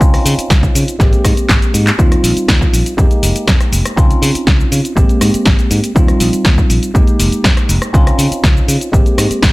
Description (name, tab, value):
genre	filtered disco house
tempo	121 BPM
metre	4/4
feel	straight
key	unclear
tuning	A4 = 440 Hz
part	tine electric piano	accompaniment	0.0-9.5 s	G3 to G4	-18 LUFS	equal	phaser, vintage 12-bit sampler grit, sidechain pumping
part	modern bright fingered electric bass	bass	0.0-9.5 s	F1 to Db3	-16 LUFS	equal	tube saturation, sidechain pumping
part	electronic kick drum	drums	0.0-9.5 s	none	-12 LUFS	equal	none
part	punchy analog drum machine	drums	0.0-9.5 s	cabasa, handclaps, hi-hat, rim click, snare drum	-17 LUFS	equal	sidechain pumping on perc, sidechain pumping on hats
room	digital ambience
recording	none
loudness	-9 LUFS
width	side -21 dB against mid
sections	0.0-9.5 A section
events	drum fill 1.5-2.0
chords	0.0 Dbmaj9; 1.0 Abmaj9; 2.0 Eb69; 3.0 Fm11; 4.0 Dbmaj9; 5.0 Abmaj9; 6.0 Eb69; 7.0 Fm11; 7.9 Dbmaj9; 8.9 Abmaj9